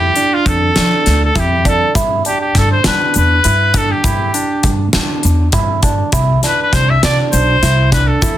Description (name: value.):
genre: progressive instrumental, band music in an uneven meter.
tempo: 201 BPM (eighths).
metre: 7/8.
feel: straight.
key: C major.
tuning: A4 = 440 Hz.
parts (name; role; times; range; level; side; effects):
clear trumpet; melody; 0.0-8.4 s; F4 to E5; -15 LUFS; left 1 dB; none.
barky tine electric piano; arpeggios; 0.0-8.4 s; D4 to E4; -19 LUFS; right 4 dB; overdrive, phaser.
upright bass; bass; 0.0-8.4 s; B1 to G3; -15 LUFS; equal; none.
huge arena drum kit; drums; 0.2-8.4 s; hi-hat, kick drum, snare drum; -17 LUFS; equal; soft clipping on kick.
tube shaker; percussion; 2.0-8.4 s; none; -27 LUFS; left 6 dB; none.
room: moderate studio reverb, RT60 0.6 s.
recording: dense, heavily limited modern master.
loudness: -11 LUFS.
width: side -12 dB against mid.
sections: 0.0-8.4 A section.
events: trumpet solo 0.0-8.4.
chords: 0.0 F6; 2.0 G; 6.1 C.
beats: 0.17 0.47 0.77 1.06 1.36 1.66 | 1.96 2.26 2.56 2.85 3.15 3.45 3.75 | 4.05 4.34 4.64 4.94 5.24 5.54 5.84 | 6.14 6.43 6.73 7.03 7.33 7.63 7.93 | 8.22.